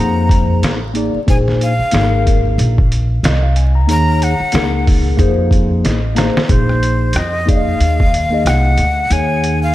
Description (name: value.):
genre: hip hop, jazz-hop.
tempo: 92 BPM.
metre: 4/4.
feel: swing 58% on 16ths.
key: Bb minor.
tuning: A4 = 437 Hz.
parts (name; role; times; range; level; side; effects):
breathy jazz flute; melody; 0.0-9.7 s; Cb5 to Bb5; -20 LUFS; left 1 dB; ping-pong delay.
mellow tine electric piano; accompaniment; 0.0-9.7 s; Bb3 to Bb5; -19 LUFS; left 2 dB; phaser.
upright bass; bass; 0.0-9.7 s; Ab1 to F2; -15 LUFS; equal; none.
trip hop sampler-style drum kit; drums; 0.3-9.6 s; hi-hat, kick drum, rim click, snare drum; -16 LUFS; equal; vintage 12-bit sampler grit.
room: light reverb.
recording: vinyl crackle.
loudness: -12 LUFS.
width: side -15 dB against mid.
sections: 0.0-6.5 A section; 6.5-9.7 B section.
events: flute solo 0.0-6.5; tine electric piano fill 5.5-6.5; drum fill 5.8-6.5.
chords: 0.0 Fm7; 1.3 Bb9sus4; 3.9 Ebm7; 5.2 Fm7; 6.5 Bb9sus4; 9.1 Eb7(no3).